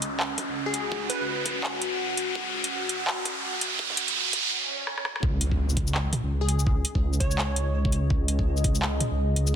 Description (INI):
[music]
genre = half-time drum and bass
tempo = 167 BPM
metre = 4/4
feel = swing 59% on 16ths, half-time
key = unclear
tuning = A4 = 440 Hz
[part]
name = deep dark ambient pad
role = sustained chords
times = 0.0-9.6 s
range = C#4 to F#5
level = -34 LUFS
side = left 1 dB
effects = chorus, built-in reverb, sidechain pumping
[part]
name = dark detuned saw bass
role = bass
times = 0.0-9.6 s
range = C#2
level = -27 LUFS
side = equal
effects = none
[part]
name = drum and bass drum kit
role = drums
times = 0.0-9.5 s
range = handclaps, hi-hat, rim click, shaker, toms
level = -29 LUFS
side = equal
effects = high-pass filter on hats, high-pass filter on snare, high-pass filter on toms, high-pass filter on perc, high-pass filter on room
[part]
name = riser, swell and impact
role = sound effects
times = 0.0-6.7 s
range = none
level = -29 LUFS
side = right 2 dB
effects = none
[part]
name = electronic kick drum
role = drums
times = 0.4-8.7 s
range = none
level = -27 LUFS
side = equal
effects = high-pass filter on kick, high-pass filter on room
[part]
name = glassy wavetable pluck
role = melody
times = 0.7-1.5, 6.4-7.7 s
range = G#4 to C#5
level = -34 LUFS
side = equal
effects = chorus, ping-pong delay
[sound]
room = light reverb, digital ambience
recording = dense, heavily limited modern master, high-pass filter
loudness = -24 LUFS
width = side -9 dB against mid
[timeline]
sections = 0.0-5.2 A section; 5.2-9.6 B section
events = build-up 0.0-5.2; riser 0.0-4.5; filter sweep 0.0-5.2; break 4.5-5.2; swell 4.5-5.2; drum fill 4.9-5.2; drop 5.2-9.6; impact 5.2-6.7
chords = 0.0 C#5